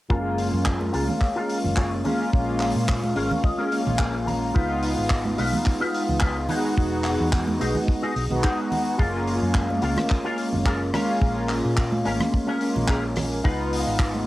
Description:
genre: nu-disco, nu disco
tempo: 108 BPM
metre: 4/4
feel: swing 54% on 16ths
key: F# major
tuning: A4 = 441 Hz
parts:
  - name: mellow synth brass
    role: accompaniment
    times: 0.1-14.3 s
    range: G#3 to F#4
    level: -25 LUFS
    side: equal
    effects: chorus, cassette tape, tape echo
  - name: electric guitar with an envelope filter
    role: riff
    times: 0.1-14.2 s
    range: C#4 to A#5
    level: -29 LUFS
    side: left 2 dB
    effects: ensemble chorus, low-pass filter, cassette tape
  - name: hollow-body short-scale fingered electric bass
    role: bass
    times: 0.1-14.2 s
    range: E1 to A#2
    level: -28 LUFS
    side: equal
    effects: tube saturation, sidechain pumping
  - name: kick drum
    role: drums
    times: 0.1-14.1 s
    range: none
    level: -21 LUFS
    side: equal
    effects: cassette tape
  - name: damped 70s drum kit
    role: drums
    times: 0.4-14.1 s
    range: handclaps, hi-hat, rim click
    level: -32 LUFS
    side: equal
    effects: cassette tape
  - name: congas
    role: percussion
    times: 0.8-14.3 s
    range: none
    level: -31 LUFS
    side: right 2 dB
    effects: none
room: moderate spring reverb, RT60 1.3 s, small room reverb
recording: home recording on cassette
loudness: -21 LUFS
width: side -16 dB against mid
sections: 0.1-14.3 A section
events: filter sweep on clean electric guitar 0.1-14.3; clean electric guitar fill 2.9-4.6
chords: 0.1 F#maj9; 2.1 A#m7; 4.6 C#9; 6.5 Emaj9; 9.0 F#maj9; 10.9 A#m7; 13.4 C#9

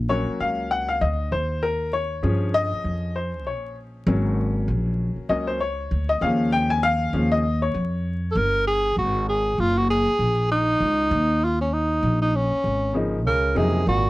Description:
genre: hip hop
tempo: 98 BPM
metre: 4/4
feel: swing 58% on 16ths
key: Ab mixolydian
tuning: A4 = 440 Hz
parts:
  - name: upright bass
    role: bass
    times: 0.0-14.1 s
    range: Gb1 to G2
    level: -24 LUFS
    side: equal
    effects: none
  - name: clear upright piano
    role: accompaniment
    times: 0.1-8.5, 12.9-13.8 s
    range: Db3 to Ab5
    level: -24 LUFS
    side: left 2 dB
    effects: none
  - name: breathy tenor saxophone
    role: melody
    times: 8.3-14.1 s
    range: Db4 to Bb4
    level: -21 LUFS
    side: right 1 dB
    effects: none
  - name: warm trombone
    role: second line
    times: 13.3-14.1 s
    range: Bb2 to Db3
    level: -27 LUFS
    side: right 4 dB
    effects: none
room: studio reverb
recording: dry, close 1970s-style studio recording, vinyl crackle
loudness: -20 LUFS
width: side -18 dB against mid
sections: 0.0-9.0 A section; 9.0-14.1 B section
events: upright piano solo 0.0-9.0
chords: 0.0 Ab9sus4 (rootless); 1.3 Eb9sus4; 4.1 Ab9sus4; 6.2 Eb9sus4; 9.0 Ab9sus4; 11.1 Eb9sus4

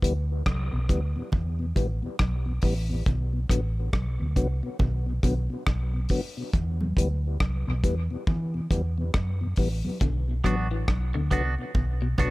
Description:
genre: dub reggae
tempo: 69 BPM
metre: 4/4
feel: swing 61% on 16ths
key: B phrygian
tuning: A4 = 440 Hz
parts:
  - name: mellow tonewheel organ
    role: accompaniment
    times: 0.0-12.3 s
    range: E2 to B3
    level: -33 LUFS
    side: left 2 dB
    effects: overdrive, chorus vibrato, slow rotary speaker, dub echo
  - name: vintage muted fingered electric bass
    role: bass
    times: 0.0-12.3 s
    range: A1 to E3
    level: -27 LUFS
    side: equal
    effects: none
  - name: deep reggae drum kit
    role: drums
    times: 0.0-12.3 s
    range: hi-hat, kick drum, rim click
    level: -26 LUFS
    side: equal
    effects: none
  - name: congas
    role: percussion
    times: 0.5-12.3 s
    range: none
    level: -36 LUFS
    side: right 2 dB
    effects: dub echo
  - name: electric guitar at the edge of break-up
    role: arpeggios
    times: 10.0-12.3 s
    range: B2 to F#3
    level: -33 LUFS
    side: left 5 dB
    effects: dub echo
  - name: clean electric guitar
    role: accompaniment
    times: 10.4-12.3 s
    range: B3 to F#4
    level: -31 LUFS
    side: right 4 dB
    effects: dub echo
room: little or no reverb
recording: none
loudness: -24 LUFS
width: side -20 dB against mid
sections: 0.0-12.3 A section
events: break 0.0-10.0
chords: 0.0 Em; 3.1 Bm; 6.5 Em; 10.0 Bm

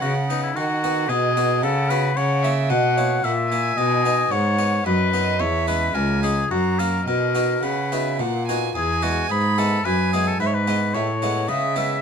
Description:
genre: classical, baroque-style sonata movement with continuo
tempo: 110 BPM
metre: 3/4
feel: straight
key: B major, E major from 8.8 s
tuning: A4 = 441 Hz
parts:
  - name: warm oboe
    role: melody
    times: 0.0-12.0 s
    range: D#4 to F#5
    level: -23 LUFS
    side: left 5 dB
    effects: none
  - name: warm violin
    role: second line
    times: 0.0-12.0 s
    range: C#5 to B5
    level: -27 LUFS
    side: right 7 dB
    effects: none
  - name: harpsichord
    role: accompaniment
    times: 0.0-12.0 s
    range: C#2 to G#4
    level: -25 LUFS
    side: left 2 dB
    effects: none
  - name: rich cello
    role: bass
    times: 0.0-12.0 s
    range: C#2 to D#3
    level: -24 LUFS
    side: right 2 dB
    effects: none
room: little or no reverb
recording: close, detailed microphones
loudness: -18 LUFS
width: side -6 dB against mid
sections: 0.0-8.8 A section; 8.8-12.0 A section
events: none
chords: 0.0 B; 2.2 F#7; 3.8 B; 5.4 C#m/E; 6.5 F#; 7.1 B; 8.8 E; 10.4 E/G#

